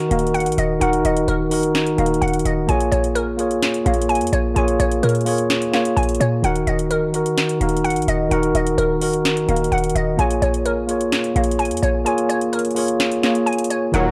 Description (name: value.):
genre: hip hop, trap.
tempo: 128 BPM.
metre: 4/4.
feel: half-time.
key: unclear.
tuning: A4 = 441 Hz.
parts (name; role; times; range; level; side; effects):
mellow tine electric piano; accompaniment; 0.0-14.1 s; Eb3 to Db5; -22 LUFS; equal; low-pass filter.
glassy wavetable pluck; arpeggios; 0.0-14.1 s; Bb3 to Ab5; -26 LUFS; equal; chorus, low-pass filter, tape echo.
short 808-style bass; bass; 0.1-14.1 s; Db1 to Bb2; -25 LUFS; equal; none.
trap drum kit; drums; 0.1-14.0 s; hi-hat, snare drum; -28 LUFS; equal; overdrive.
sync-sweep polysynth; stabs; 13.9-14.1 s; Eb2 to Gb3; -22 LUFS; equal; chorus.
room: light reverb, digital ambience.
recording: dry, gritty hardware recording, cassette tape.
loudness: -19 LUFS.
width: mono.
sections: 0.0-13.9 A section.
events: kick muted 12.1-13.9.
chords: 0.0 Ebm; 2.7 Bbm7; 6.4 Ebm; 10.2 Bbm7.